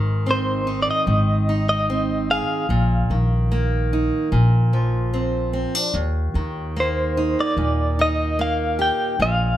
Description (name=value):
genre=acoustic folk-pop ballad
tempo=74 BPM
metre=4/4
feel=straight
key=unclear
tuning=A4 = 441 Hz
part: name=fingerpicked steel-string acoustic guitar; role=accompaniment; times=0.0-9.6 s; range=Eb2 to Ab4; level=-23 LUFS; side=right 1 dB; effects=none
part: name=upright bass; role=bass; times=0.0-9.5 s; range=Ab1 to Eb2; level=-21 LUFS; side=equal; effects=none
part: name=direct-recorded clean electric guitar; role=melody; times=0.3-9.6 s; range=C5 to G5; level=-22 LUFS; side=equal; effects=tremolo, plate reverb
room=light reverb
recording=close, detailed microphones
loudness=-18 LUFS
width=side -12 dB against mid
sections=0.0-9.6 A section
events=none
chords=0.0 Ab; 2.7 Bbsus4; 4.3 Bbadd9; 5.9 Eb5